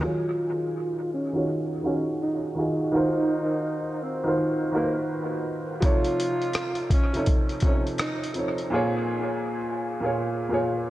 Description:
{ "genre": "lo-fi hip hop", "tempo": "83 BPM", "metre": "4/4", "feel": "swing 64% on 16ths", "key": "Eb minor", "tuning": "A4 = 442 Hz", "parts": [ { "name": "warm upright piano", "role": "accompaniment", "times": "0.0-10.9 s", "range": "Bb2 to Eb5", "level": "-26 LUFS", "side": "right 1 dB", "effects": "cassette tape, low-pass filter, dub echo" }, { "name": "mellow tenor saxophone", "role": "melody", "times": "0.1-8.3 s", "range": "Bb3 to F4", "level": "-31 LUFS", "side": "equal", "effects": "low-pass filter, dub echo" }, { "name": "dusty soul sampler-style drum kit", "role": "drums", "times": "5.8-8.7 s", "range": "hi-hat, kick drum, rim click", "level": "-25 LUFS", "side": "equal", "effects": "vintage 12-bit sampler grit" } ], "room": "moderate echo chamber reverb, RT60 2.2 s", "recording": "echo-heavy mix, cassette tape", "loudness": "-23 LUFS", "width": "side -15 dB against mid", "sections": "0.0-10.9 A section", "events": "filter sweep 0.0-10.9", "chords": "0.0 Ebm11; 2.9 Ebm69; 5.8 F7b13; 8.7 Bbm7" }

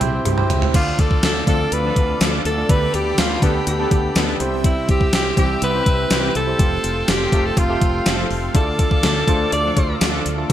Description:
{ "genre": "1980s-style pop", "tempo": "123 BPM", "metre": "4/4", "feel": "straight", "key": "D dorian", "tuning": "A4 = 440 Hz", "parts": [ { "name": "bright alto saxophone", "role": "melody", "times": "0.0-10.0 s", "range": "C4 to D5", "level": "-22 LUFS", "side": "equal", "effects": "none" }, { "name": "tine electric piano", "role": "accompaniment", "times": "0.0-10.5 s", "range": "C3 to E5", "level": "-25 LUFS", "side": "right 3 dB", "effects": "medium stereo tremolo" }, { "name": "brassy analog pad", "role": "sustained chords", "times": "0.0-10.5 s", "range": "C4 to E6", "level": "-28 LUFS", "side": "left 1 dB", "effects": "chorus" }, { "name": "fretless electric bass", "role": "bass", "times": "0.0-10.5 s", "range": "F1 to D2", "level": "-24 LUFS", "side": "equal", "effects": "analog chorus" }, { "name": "gated 80s digital drum machine", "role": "drums", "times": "0.0-10.5 s", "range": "crash cymbal, hi-hat, kick drum, snare drum, tambourine, toms", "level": "-18 LUFS", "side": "equal", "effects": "gated reverb, gated reverb snare, overdrive" }, { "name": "cowbell", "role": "percussion", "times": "0.0-0.4, 8.5-10.5 s", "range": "none", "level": "-34 LUFS", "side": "left 9 dB", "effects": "none" }, { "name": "analog synth brass", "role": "stabs", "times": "1.5-10.2 s", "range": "C3 to A4", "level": "-28 LUFS", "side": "left 2 dB", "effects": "chorus, digital delay" } ], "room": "moderate plate reverb, RT60 2.3 s", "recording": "bright 1980s-style digital production", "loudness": "-16 LUFS", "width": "side -11 dB against mid", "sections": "0.7-10.5 A section", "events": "drum fill 0.0-0.7", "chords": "0.0 C; 0.7 Dm; 2.7 Gadd9/D; 4.4 C; 6.6 Fadd9; 8.5 Dm" }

